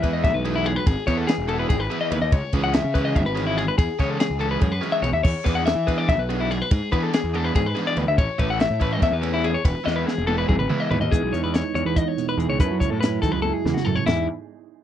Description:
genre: math rock and midwest emo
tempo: 286 BPM (eighths)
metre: 7/8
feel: straight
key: E major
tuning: A4 = 440 Hz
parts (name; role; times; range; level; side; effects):
- mellow electric guitar; accompaniment; 0.0-0.9, 11.1-14.3 s; E2 to B4; -27 LUFS; right 11 dB; spring reverb
- clean electric guitar; arpeggios; 0.0-14.3 s; E4 to F#5; -25 LUFS; left 5 dB; warbly pitch drift
- crunchy overdriven guitar; riff; 0.0-11.0 s; E3 to G#4; -27 LUFS; right 3 dB; none
- fuzz picked electric bass; bass; 0.0-14.3 s; E1 to F#3; -25 LUFS; equal; overdrive
- compact cocktail drum kit; drums; 0.0-14.2 s; crash cymbal, hi-hat, kick drum, ride cymbal, snare drum, toms; -22 LUFS; equal; none
room: little or no reverb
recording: dry, close 1970s-style studio recording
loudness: -20 LUFS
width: side -10 dB against mid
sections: 0.0-11.1 A section; 11.1-14.1 B section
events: drum fill 9.9-11.1, 13.4-14.1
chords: 0.0 Emaj7; 2.3 C#m7; 5.2 E7; 8.2 A; 9.7 Emaj7; 12.6 F#m9; 14.1 Emaj7

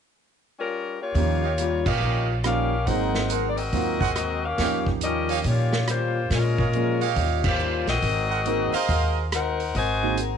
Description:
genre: jazz, big band swing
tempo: 140 BPM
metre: 4/4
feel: swing 65% on 8ths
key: Eb mixolydian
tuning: A4 = 443 Hz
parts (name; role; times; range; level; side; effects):
- mellow saxophone section; melody; 0.6-10.2 s; G3 to Ab5; -27 LUFS; left 4 dB; none
- picked acoustic archtop guitar; accompaniment; 1.1-10.4 s; Bb2 to Bb4; -31 LUFS; left 12 dB; none
- upright bass; bass; 1.1-10.4 s; Ab1 to Bb2; -26 LUFS; equal; none
- warm upright piano; accompaniment; 1.2-10.2 s; Eb3 to Ab4; -30 LUFS; right 16 dB; none
- vintage drum kit; drums; 1.2-10.3 s; crash cymbal, hi-hat, kick drum, rim click, snare drum; -29 LUFS; right 2 dB; none
- clear trumpet section; stabs; 1.4-9.3 s; G4 to Gb5; -30 LUFS; right 14 dB; none
room: light reverb, studio reverb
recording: 1960s-style stereo with parts hard left and right, nothing above 10.7 kHz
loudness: -21 LUFS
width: side -7 dB against mid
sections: 0.0-1.2 A section; 1.2-10.4 B section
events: band accent 1.8, 7.4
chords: 0.0 Gm7b5; 1.2 Eb9; 2.9 Ab9; 4.6 Eb9; 6.3 Bbm7; 7.2 Eb9; 8.0 Ab9

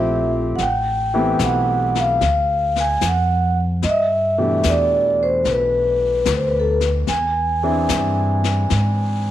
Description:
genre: jazz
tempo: 74 BPM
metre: 4/4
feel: swing 68% on 8ths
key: unclear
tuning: A4 = 436 Hz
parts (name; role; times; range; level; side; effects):
- vibraphone with medium mallets; melody; 0.0-9.3 s; A4 to Ab5; -19 LUFS; equal; none
- warm concert grand piano; accompaniment; 0.0-9.3 s; B2 to G#4; -23 LUFS; left 1 dB; none
- upright bass; bass; 0.0-9.3 s; A1 to G#2; -22 LUFS; equal; none
- jazz brush drum kit; drums; 0.6-9.3 s; brushed snare drum, hi-hat, snare drum; -28 LUFS; left 10 dB; none
room: light reverb, small room ambience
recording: 1960s-style stereo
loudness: -16 LUFS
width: side -12 dB against mid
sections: 0.0-9.3 A section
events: none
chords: 0.0 Fmaj9; 0.6 Am7; 2.2 Dm; 3.8 G69; 7.1 E7alt

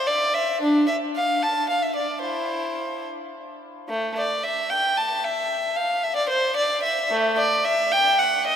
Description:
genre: classical, baroque-style suite movement for unaccompanied violin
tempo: 74 BPM (dotted quarters)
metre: 6/8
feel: rubato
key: unclear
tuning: A4 = 442 Hz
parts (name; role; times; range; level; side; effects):
- rich violin; solo; 0.0-8.6 s; A3 to A5; -20 LUFS; equal; none
room: wet cathedral reverb, RT60 5.8 s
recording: none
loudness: -20 LUFS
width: side -8 dB against mid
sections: 0.0-8.6 A section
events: none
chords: none

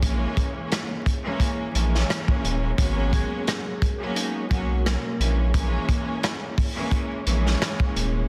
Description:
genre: hip hop, boom-bap hip-hop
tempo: 87 BPM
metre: 4/4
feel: swing 57% on 16ths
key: unclear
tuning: A4 = 440 Hz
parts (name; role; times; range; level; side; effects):
- rich studio string section; accompaniment; 0.0-8.2 s; B2 to C#4; -31 LUFS; equal; cassette tape
- mellow tonewheel organ; sustained chords; 0.0-8.3 s; G#3 to C#5; -40 LUFS; equal; chorus vibrato, stopped rotary speaker
- saturated sub bass; bass; 0.0-8.2 s; D#1 to B1; -26 LUFS; equal; none
- crunchy breakbeat drum kit; drums; 0.0-8.1 s; hi-hat, kick drum, rim click, snare drum; -27 LUFS; equal; none
- electric guitar at the edge of break-up; melody; 3.1-5.2 s; F#3 to D#5; -37 LUFS; equal; tape echo
room: small room ambience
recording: dense, heavily limited modern master, vinyl crackle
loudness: -24 LUFS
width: mono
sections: 0.0-8.3 A section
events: none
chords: 0.0 A#m7b5; 2.8 G#m11; 5.2 A#m7b5

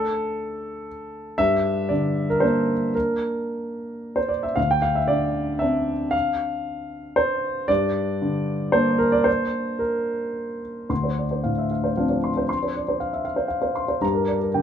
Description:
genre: neoclassical minimalist piano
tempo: 115 BPM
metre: 3/4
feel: rubato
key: D minor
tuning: A4 = 440 Hz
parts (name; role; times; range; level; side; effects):
- warm grand piano; solo; 0.0-14.6 s; D2 to C6; -21 LUFS; equal; none
room: moderate large studio reverb, RT60 0.9 s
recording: band playing live in one room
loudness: -21 LUFS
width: side -8 dB against mid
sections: 0.0-10.9 A section; 10.9-14.6 B section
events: none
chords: 0.0 D5; 1.4 Gm; 4.6 Dm7; 7.7 Gm; 10.9 Dm7; 14.0 Gm

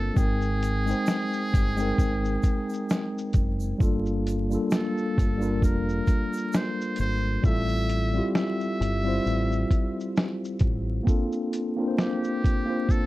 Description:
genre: lo-fi hip hop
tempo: 66 BPM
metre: 4/4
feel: swing 56% on 16ths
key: unclear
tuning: A4 = 438 Hz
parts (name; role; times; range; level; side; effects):
- trumpet with metal mute; melody; 0.0-13.1 s; G4 to E5; -33 LUFS; equal; low-pass filter
- mellow tine electric piano; accompaniment; 0.0-13.1 s; G3 to G5; -27 LUFS; left 1 dB; medium stereo tremolo, cassette tape, low-pass filter
- deep dub fingered electric bass; bass; 0.0-11.0 s; F1 to A1; -28 LUFS; equal; none
- lo-fi sampler-style drum kit; drums; 0.2-13.1 s; hi-hat, kick drum, shaker, snare drum; -24 LUFS; equal; vintage 12-bit sampler grit
- egg shaker; percussion; 0.2-7.2 s; none; -51 LUFS; right 6 dB; none
room: light reverb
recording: dark, warm production, vinyl crackle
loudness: -23 LUFS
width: side -17 dB against mid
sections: 0.0-13.1 A section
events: none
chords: 0.2 Abmaj9; 3.8 Gm9; 7.4 Fmaj9; 11.1 Bbmaj9

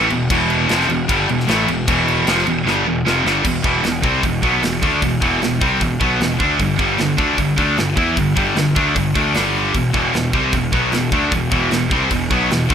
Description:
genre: heavy metal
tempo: 152 BPM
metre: 4/4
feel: straight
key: E minor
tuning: A4 = 438 Hz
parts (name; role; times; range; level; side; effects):
- high-gain distorted guitar; riff; 0.0-12.7 s; E2 to E4; -20 LUFS; left 11 dB; distortion
- scooped high-gain guitar; riff; 0.0-12.7 s; E2 to E4; -19 LUFS; right 9 dB; distortion
- fuzz picked electric bass; bass; 0.0-12.7 s; E1 to E2; -22 LUFS; equal; overdrive
- tight metal drum kit; drums; 0.1-12.7 s; crash cymbal, hi-hat, kick drum, snare drum; -22 LUFS; equal; none
room: little or no reverb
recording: rough home demo mix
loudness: -14 LUFS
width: side -8 dB against mid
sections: 0.0-3.4 A section; 3.4-12.7 B section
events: drum fill 2.7-3.4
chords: 0.0 Em; 6.6 G5; 9.7 Em

